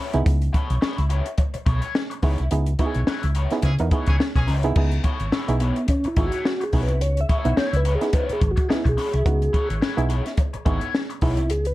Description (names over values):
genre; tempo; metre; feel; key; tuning
funk; 107 BPM; 4/4; swing 56% on 16ths; C# minor; A4 = 441 Hz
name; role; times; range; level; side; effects
raw garage guitar; accompaniment; 0.0-11.4 s; E4 to C#5; -32 LUFS; left 4 dB; wah, overdrive
muted clav; stabs; 0.1-11.7 s; B3 to B4; -28 LUFS; right 4 dB; none
hollow-body short-scale fingered electric bass; bass; 0.1-11.7 s; G#1 to C#3; -22 LUFS; equal; none
compact cocktail drum kit; drums; 0.1-11.7 s; crash cymbal, hi-hat, kick drum, snare drum; -23 LUFS; equal; none
clear horn section; second line; 3.6-4.5 s; E3 to G#4; -31 LUFS; left 1 dB; none
mellow tonewheel organ; melody; 5.6-11.7 s; B3 to E5; -26 LUFS; equal; chorus vibrato, stopped rotary speaker, tube saturation, tape echo
room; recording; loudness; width
little or no reverb; dark, warm production; -19 LUFS; side -17 dB against mid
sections
0.0-4.8 A section; 4.8-11.7 B section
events
band accent 2.5-4.8; tonewheel organ solo 4.8-11.7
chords
0.0 C#m7